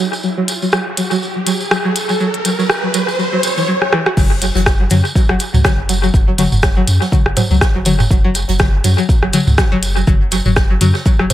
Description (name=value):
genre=minimal techno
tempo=122 BPM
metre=4/4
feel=swing 56% on 16ths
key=unclear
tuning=A4 = 440 Hz
part: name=string-like resonator pluck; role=riff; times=0.0-11.2 s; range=E3 to F#4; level=-19 LUFS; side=equal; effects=chorus, sidechain pumping, dub echo
part: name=riser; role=sound effects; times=0.0-3.7 s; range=none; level=-20 LUFS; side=equal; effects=none
part: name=tambourine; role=percussion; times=0.1-11.3 s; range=none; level=-25 LUFS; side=right 2 dB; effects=none
part: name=minimal click drum kit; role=drums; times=0.5-11.3 s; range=crash cymbal, hi-hat, rim click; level=-19 LUFS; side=equal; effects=dub echo
part: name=punchy sub bass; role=bass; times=4.2-11.3 s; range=F#1 to F#2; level=-16 LUFS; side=equal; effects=sidechain pumping
part: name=electronic kick drum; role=drums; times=4.2-11.2 s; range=none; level=-14 LUFS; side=equal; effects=none
part: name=open jazz drum kit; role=drums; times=4.2-11.3 s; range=hi-hat, shaker, snare drum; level=-31 LUFS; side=right 2 dB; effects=sidechain pumping on hats, high-pass filter on hats, high-pass filter on snare, sidechain pumping on perc, high-pass filter on perc, high-pass filter on room
part: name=electronic toms and percussion blips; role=percussion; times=4.2-11.3 s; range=none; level=-18 LUFS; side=equal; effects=none
room=light reverb, small room reverb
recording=echo-heavy mix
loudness=-12 LUFS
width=side -13 dB against mid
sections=0.0-4.2 A section; 4.2-11.3 B section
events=build-up 0.0-4.2; riser 0.0-3.7; filter sweep on synth pluck 0.0-4.2; drum fill 3.8-4.2; drop 4.2-11.3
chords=0.0 N.C.; 4.2 F#5